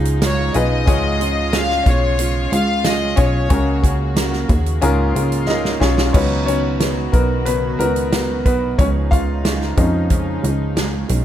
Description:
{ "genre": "piano-driven pop", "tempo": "91 BPM", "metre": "4/4", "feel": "straight", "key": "Db mixolydian", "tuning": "A4 = 440 Hz", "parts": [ { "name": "clear concert grand piano", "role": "accompaniment", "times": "0.0-11.2 s", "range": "Ab2 to F5", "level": "-22 LUFS", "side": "left 2 dB", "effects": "analog delay" }, { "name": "warm studio string section", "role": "sustained chords", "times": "0.0-11.2 s", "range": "Db3 to Gb4", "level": "-30 LUFS", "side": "left 2 dB", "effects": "none" }, { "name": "fingerpicked steel-string acoustic guitar", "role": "riff", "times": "0.0-11.2 s", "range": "Db3 to Cb5", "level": "-25 LUFS", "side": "right 8 dB", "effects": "none" }, { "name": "plucky analog bass", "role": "bass", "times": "0.0-11.2 s", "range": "Cb2 to F2", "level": "-20 LUFS", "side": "equal", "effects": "none" }, { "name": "natural country drum kit", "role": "drums", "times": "0.1-11.2 s", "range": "crash cymbal, hi-hat, kick drum, snare drum", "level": "-19 LUFS", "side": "equal", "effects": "none" }, { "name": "warm studio violin section", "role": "melody", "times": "0.3-3.8 s", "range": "Db5 to F5", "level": "-21 LUFS", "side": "left 3 dB", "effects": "analog delay" } ], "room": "light reverb, small room ambience", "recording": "echo-heavy mix", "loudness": "-15 LUFS", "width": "side -11 dB against mid", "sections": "0.0-6.1 A section; 6.1-11.2 B section", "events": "drum fill 5.5-6.1; grand piano solo 6.1-11.2", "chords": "0.0 Dbadd9; 0.9 Db; 3.5 Gbadd9/Db; 4.8 Db6; 6.1 Cb; 8.8 Dbadd9", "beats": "0.22 | 0.88 1.54 2.19 2.85 | 3.51 4.17 4.83 5.49 | 6.15 6.80 7.46 8.12 | 8.78 9.44 10.10 10.76" }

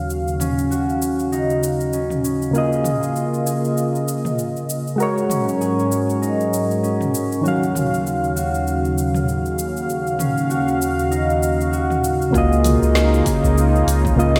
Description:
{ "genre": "sunset chillout", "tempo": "98 BPM", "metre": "4/4", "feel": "swing 57% on 16ths", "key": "Eb minor", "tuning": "A4 = 441 Hz", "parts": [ { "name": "soft electric-piano-like synth keys", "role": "accompaniment", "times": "0.0-14.4 s", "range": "Db3 to F5", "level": "-25 LUFS", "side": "equal", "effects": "chorus, delay" }, { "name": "lush unison pad", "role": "sustained chords", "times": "0.0-14.4 s", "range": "Eb2 to F5", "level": "-25 LUFS", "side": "equal", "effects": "chorus" }, { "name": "concert harp", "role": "arpeggios", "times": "0.0-14.4 s", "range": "Db4 to Ab4", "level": "-26 LUFS", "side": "equal", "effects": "low-pass filter, delay" }, { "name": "deep house drum kit", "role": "drums", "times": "0.1-14.4 s", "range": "cabasa, hi-hat, snare drum, toms", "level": "-30 LUFS", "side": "equal", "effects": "small room ambience" }, { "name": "warm sub bass", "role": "bass", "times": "12.3-14.4 s", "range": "Bb1 to Db2", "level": "-20 LUFS", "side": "equal", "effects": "none" }, { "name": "electronic kick drum", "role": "drums", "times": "12.3-14.2 s", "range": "none", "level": "-25 LUFS", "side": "equal", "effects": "small room ambience" } ], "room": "wet lush hall reverb, RT60 2.6 s", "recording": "dreamy mix soaked in reverb", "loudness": "-20 LUFS", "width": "mono", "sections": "0.0-12.3 A section; 12.3-14.4 B section", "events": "filter sweep on analog synth pad 0.0-12.3", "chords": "0.0 Ebm9; 2.5 Db69; 5.0 Ab9sus4; 7.4 Ebm9; 12.3 Db69", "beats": "| 0.10 0.71 1.32 1.94 | 2.55 3.16 3.77 4.39 | 5.00 5.61 6.22 6.83 | 7.45 8.06 8.67 9.28 | 9.90 10.51 11.12 11.73 | 12.35 12.96 13.57 14.18" }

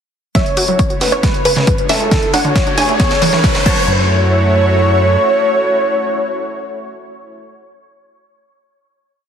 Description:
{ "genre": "uplifting trance", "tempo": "136 BPM", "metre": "4/4", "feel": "straight", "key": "F# minor", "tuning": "A4 = 440 Hz", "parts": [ { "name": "wide unison pluck", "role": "melody", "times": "0.3-7.4 s", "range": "B4 to A5", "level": "-20 LUFS", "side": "equal", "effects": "sidechain pumping, dub echo" }, { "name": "warm velvety synth lead", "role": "second line", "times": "0.3-7.4 s", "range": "A4 to C#5", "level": "-17 LUFS", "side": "equal", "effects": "chorus, dub echo" }, { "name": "supersaw pad", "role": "sustained chords", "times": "0.6-7.4 s", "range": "G#3 to C#5", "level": "-22 LUFS", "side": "equal", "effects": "sidechain pumping" }, { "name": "electronic kick drum", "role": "drums", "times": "0.3-3.7 s", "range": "none", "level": "-16 LUFS", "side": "equal", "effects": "overdrive" }, { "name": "techno drum kit", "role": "drums", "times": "0.3-3.7 s", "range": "crash cymbal, hi-hat, snare drum", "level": "-20 LUFS", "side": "equal", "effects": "high-pass filter on snare, high-pass filter on hats, high-pass filter on cymbals, high-pass filter on room" }, { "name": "riser", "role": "sound effects", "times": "1.5-3.9 s", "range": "none", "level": "-22 LUFS", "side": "equal", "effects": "none" }, { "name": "analog pluck", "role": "arpeggios", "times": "0.4-4.1 s", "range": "G#2 to F#4", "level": "-21 LUFS", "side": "right 2 dB", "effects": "chorus, cassette tape, sidechain pumping, dub echo" }, { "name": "gritty driven synth bass", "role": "bass", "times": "0.6-5.2 s", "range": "C#2 to F#2", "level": "-17 LUFS", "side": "equal", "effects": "distortion, sidechain pumping, high-pass filter" } ], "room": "moderate digital room reverb, RT60 1.2 s", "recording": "heavily compressed radio sound, multiband compression", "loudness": "-11 LUFS", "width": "side -8 dB against mid", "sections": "0.4-3.9 build; 3.9-7.4 final hit", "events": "build-up 0.4-3.9; drum fill 0.4-3.9; filter sweep on synth pluck 0.4-3.9; riser 1.5-3.9", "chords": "0.4 F#m7; 1.2 C#; 2.1 D; 3.0 E7; 3.7 F#m7", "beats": "| 0.35 0.79 1.23 1.67 | 2.12 2.56 3.00 3.44 | 3.88 4.32 4.76 5.20 | 5.64 6.09 6.53 6.97" }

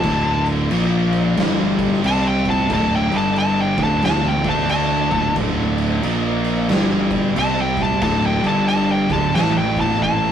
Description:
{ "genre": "stoner and doom metal", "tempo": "90 BPM", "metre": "4/4", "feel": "swing 63% on 8ths", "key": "D minor", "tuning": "A4 = 440 Hz", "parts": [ { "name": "fuzz lead guitar", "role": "melody", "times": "0.0-10.3 s", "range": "G5 to A5", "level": "-21 LUFS", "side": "left 1 dB", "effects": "distortion" }, { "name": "distorted electric guitar", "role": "riff", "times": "0.0-10.3 s", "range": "D2 to D4", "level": "-26 LUFS", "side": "right 1 dB", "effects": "overdrive" }, { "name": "thick fuzz guitar", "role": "riff", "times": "0.0-10.3 s", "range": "D2 to D4", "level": "-22 LUFS", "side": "left 3 dB", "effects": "distortion" }, { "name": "thick fuzz guitar", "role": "riff", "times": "0.0-10.3 s", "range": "D2 to D4", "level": "-23 LUFS", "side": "right 4 dB", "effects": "distortion" }, { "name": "fuzz fingered electric bass", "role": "bass", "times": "0.0-10.3 s", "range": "D1 to D2", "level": "-26 LUFS", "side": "right 1 dB", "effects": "overdrive" }, { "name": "oversized low-tuned drum kit", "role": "drums", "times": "0.0-10.2 s", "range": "crash cymbal, kick drum, snare drum", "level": "-24 LUFS", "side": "right 1 dB", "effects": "none" } ], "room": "light reverb", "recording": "rough rehearsal-room recording, warm saturation", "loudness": "-16 LUFS", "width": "side -9 dB against mid", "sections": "0.0-10.3 A section", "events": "lead electric guitar solo 0.0-10.3; drum fill 10.0-10.3", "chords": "0.0 D5; 0.7 Bb5; 1.4 G5; 2.0 C5; 2.7 D5; 3.0 G5; 3.7 D5; 6.0 Bb5; 6.7 G5; 7.4 C5; 8.0 D5; 8.3 G5; 9.0 D5; 9.3 A5", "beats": "| 0.03 0.70 1.36 2.03 | 2.70 3.36 4.03 4.69 | 5.36 6.02 6.69 7.35 | 8.02 8.68 9.35 10.01" }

